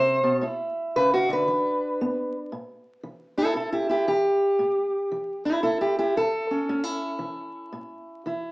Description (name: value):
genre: acoustic country blues, solo or duo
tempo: 115 BPM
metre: 4/4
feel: swing 63% on 8ths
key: A mixolydian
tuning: A4 = 445 Hz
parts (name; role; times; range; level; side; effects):
- fingerpicked steel-string acoustic guitar; solo; 0.0-8.5 s; A2 to C5; -23 LUFS; equal; none
room: moderate studio reverb, RT60 0.8 s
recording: band playing live in one room, vinyl crackle, small speaker sound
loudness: -22 LUFS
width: side -22 dB against mid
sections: 0.0-2.5 A section; 2.5-8.5 B section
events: steel-string acoustic guitar solo 0.0-2.5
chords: 0.4 A; 1.5 E5; 2.5 A7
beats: | 0.43 0.95 1.48 2.00 | 2.52 3.04 3.56 4.08 | 4.60 5.12 5.65 6.17 | 6.69 7.21 7.73 8.25